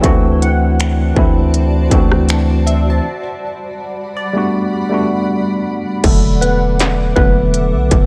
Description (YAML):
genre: contemporary R&B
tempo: 80 BPM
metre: 4/4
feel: straight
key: unclear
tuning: A4 = 439 Hz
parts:
  - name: mellow tine electric piano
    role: accompaniment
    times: 0.0-8.1 s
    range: D3 to B4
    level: -18 LUFS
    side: equal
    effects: none
  - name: granular cloud pad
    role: sustained chords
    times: 0.0-8.1 s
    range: G3 to D6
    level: -27 LUFS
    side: equal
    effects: built-in reverb, sidechain pumping
  - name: long sustained 808-style bass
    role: bass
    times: 0.0-8.1 s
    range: E1 to D2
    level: -18 LUFS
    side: equal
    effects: none
  - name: industrial drum kit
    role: drums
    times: 0.0-8.1 s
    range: crash cymbal, finger snaps, hi-hat, kick drum, rim click, snare drum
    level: -17 LUFS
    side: equal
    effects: distortion
  - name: glassy wavetable pluck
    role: texture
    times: 0.4-7.4 s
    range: D5 to A5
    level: -29 LUFS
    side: equal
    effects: chorus, delay
room: little or no reverb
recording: none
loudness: -14 LUFS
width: mono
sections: 0.0-6.0 A section; 6.0-8.1 B section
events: break 3.0-6.0; tine electric piano solo 6.0-8.1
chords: 0.0 D7; 3.0 Gmaj7; 6.0 E9sus4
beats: | 0.04 0.79 1.54 2.29 | 3.04 3.79 4.54 5.29 | 6.04 6.79 7.54